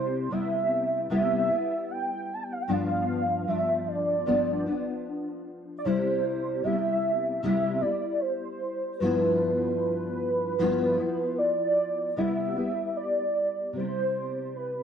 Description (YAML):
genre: indie pop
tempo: 76 BPM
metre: 4/4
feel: straight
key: C major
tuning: A4 = 442 Hz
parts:
  - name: warm velvety synth lead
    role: melody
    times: 0.0-14.8 s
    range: B4 to A5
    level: -27 LUFS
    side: right 1 dB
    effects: ensemble chorus, slapback echo
  - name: nylon-string guitar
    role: accompaniment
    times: 0.0-14.8 s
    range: G2 to E4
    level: -29 LUFS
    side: left 2 dB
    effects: ensemble chorus, warbly pitch drift
room: studio reverb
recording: dry, close 1970s-style studio recording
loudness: -25 LUFS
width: side -8 dB against mid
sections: 0.0-12.2 A section; 12.2-14.8 B section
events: none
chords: 0.0 Cmaj7; 2.7 G7; 5.8 Cmaj7; 9.0 G6; 12.2 Cmaj7